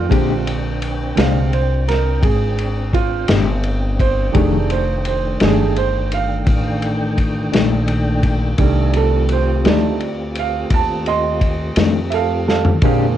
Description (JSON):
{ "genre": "slow blues", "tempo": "57 BPM (dotted quarters)", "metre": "12/8", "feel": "straight", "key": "F mixolydian", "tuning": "A4 = 441 Hz", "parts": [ { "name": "clear concert grand piano", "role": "accompaniment", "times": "0.0-13.2 s", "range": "D3 to C6", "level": "-20 LUFS", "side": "right 9 dB", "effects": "cassette tape" }, { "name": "mellow tonewheel organ", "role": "sustained chords", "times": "0.0-13.2 s", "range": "Eb3 to Ab5", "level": "-25 LUFS", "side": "equal", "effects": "slow rotary speaker, chorus vibrato, cassette tape" }, { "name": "upright bass", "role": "bass", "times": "0.0-13.2 s", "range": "F1 to Bb2", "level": "-20 LUFS", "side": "left 1 dB", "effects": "none" }, { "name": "mellow electric guitar", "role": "accompaniment", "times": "0.1-13.1 s", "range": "F2 to G4", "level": "-19 LUFS", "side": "left 10 dB", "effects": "tremolo, cassette tape" }, { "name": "vintage drum kit", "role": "drums", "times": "0.1-13.0 s", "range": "kick drum, ride cymbal, snare drum, toms", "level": "-20 LUFS", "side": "left 1 dB", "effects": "cassette tape" } ], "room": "light reverb", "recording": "home recording on cassette", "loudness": "-15 LUFS", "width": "side -11 dB against mid", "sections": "0.0-13.2 A section", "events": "grand piano solo 0.0-13.2; drum fill 12.5-12.8", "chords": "0.1 Bb13; 4.4 F13", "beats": "| 0.11 1.17 2.23 3.29 | 4.35 5.41 6.47 7.53 | 8.59 9.65 10.71 11.77 | 12.83" }